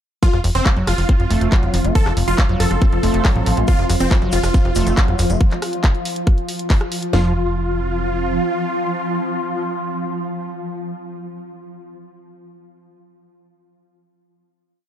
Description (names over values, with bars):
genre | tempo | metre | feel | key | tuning
psychedelic trance | 139 BPM | 4/4 | straight | F major | A4 = 441 Hz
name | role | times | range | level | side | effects
supersaw stab | melody | 0.2-10.5 s | C4 to A4 | -24 LUFS | right 1 dB | phaser, sidechain pumping, tape echo
swarming drone | sustained chords | 1.3-10.5 s | F3 to F4 | -26 LUFS | equal | built-in reverb, sidechain pumping
overdriven acid bass | riff | 0.2-7.3 s | F3 to C4 | -26 LUFS | equal | auto-pan, sidechain pumping, tape echo
garage drum kit | drums | 0.2-7.2 s | kick drum, snare drum, toms | -15 LUFS | equal | none
garage drum kit | drums | 0.2-7.1 s | handclaps, hi-hat, rim click | -25 LUFS | equal | none
ethereal airy pad | texture | 1.0-10.7 s | C4 to C6 | -27 LUFS | equal | ensemble chorus, built-in reverb, phaser, sidechain pumping
plucky analog bass | bass | 0.3-8.4 s | F1 to A1 | -19 LUFS | equal | none
tube shaker | percussion | 3.7-5.4 s | none | -33 LUFS | left 4 dB | none
room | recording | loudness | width
little or no reverb | dark, warm production | -16 LUFS | side -10 dB against mid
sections
0.2-7.1 drop; 7.1-10.6 final chord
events
drop 0.2-7.1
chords
0.2 F5